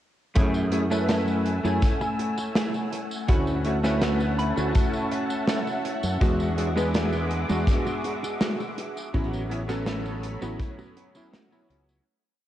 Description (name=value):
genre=vaporwave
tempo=82 BPM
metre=4/4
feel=straight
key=A major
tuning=A4 = 440 Hz
part: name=clear electric grand piano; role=accompaniment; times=0.4-12.0 s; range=F#3 to G#5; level=-29 LUFS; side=equal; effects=ensemble chorus, analog delay
part: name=soft string machine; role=sustained chords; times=0.8-12.0 s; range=A3 to E6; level=-32 LUFS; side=equal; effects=ensemble chorus
part: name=clean electric guitar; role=riff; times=0.4-11.7 s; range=G#3 to B5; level=-33 LUFS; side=right 1 dB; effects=analog chorus, analog delay
part: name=fingered electric bass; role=bass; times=0.4-12.0 s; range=A1 to F#2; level=-28 LUFS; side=equal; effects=tube saturation
part: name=kick drum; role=drums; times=0.4-10.7 s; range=none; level=-24 LUFS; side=equal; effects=none
part: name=modern studio drum kit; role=drums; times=0.4-12.0 s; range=hi-hat, snare drum, tambourine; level=-31 LUFS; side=equal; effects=gated reverb
room=light reverb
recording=cassette tape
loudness=-23 LUFS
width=side -12 dB against mid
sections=0.4-12.1 groove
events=clean electric guitar fill 4.0-6.2; fade-out 8.2-12.1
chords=0.4 F#m9; 3.3 Dmaj9; 6.2 E9; 9.1 A69